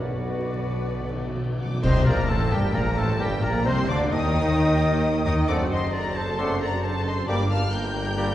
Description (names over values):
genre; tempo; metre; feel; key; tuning
classical, dramatic, fast romantic movement for symphony orchestra; 132 BPM; 4/4; rubato; G minor; A4 = 440 Hz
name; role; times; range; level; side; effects
warm symphonic violin section; melody; 0.0-8.3 s; D5 to G6; -32 LUFS; left 2 dB; none
bright clarinet; second line; 0.0-8.3 s; F#4 to Eb5; -34 LUFS; left 2 dB; none
bright silver concert flute; second line; 0.0-8.3 s; Bb4 to Bb5; -35 LUFS; left 1 dB; none
warm oboe; second line; 0.0-8.3 s; G4 to Eb5; -36 LUFS; equal; none
warm symphonic violin section; second line; 0.0-8.3 s; G4 to G5; -36 LUFS; left 2 dB; none
mellow bassoon; accompaniment; 0.0-8.3 s; B2 to Eb4; -34 LUFS; equal; none
warm symphonic viola section; accompaniment; 0.0-8.3 s; G3 to Bb4; -34 LUFS; right 1 dB; none
mellow French horn section; sustained chords; 0.0-8.3 s; G3 to B4; -34 LUFS; left 1 dB; none
clear tuba; bass; 0.0-8.3 s; F#1 to Eb2; -32 LUFS; right 2 dB; none
rich symphonic cello section; bass; 0.0-8.3 s; F#2 to Eb3; -28 LUFS; equal; none
warm studio double bass section; bass; 0.0-8.3 s; F#1 to Eb2; -28 LUFS; equal; none
timpani; percussion; 0.0-1.8 s; B2; -30 LUFS; left 1 dB; none
clear trombone section; sustained chords; 1.8-8.3 s; F#2 to A3; -34 LUFS; right 2 dB; none
clash cymbals and concert bass drum; percussion; 1.8-2.7 s; none; -32 LUFS; equal; none
room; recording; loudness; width
wet concert hall reverb, RT60 2.3 s; heard from further back in the room, vinyl crackle, nothing above 10.8 kHz; -21 LUFS; side -13 dB against mid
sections
0.0-1.8 A section; 1.8-8.3 B section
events
timpani fill 0.0-1.8; band accent 1.8-2.3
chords
0.0 Bm; 1.8 Gm; 3.7 Cm; 5.5 D7/F#; 7.3 Gm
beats
0.45 0.92 1.38 | 1.84 2.29 2.75 3.20 | 3.66 4.12 4.57 5.03 | 5.48 5.94 6.39 6.84 | 7.28 7.73 8.18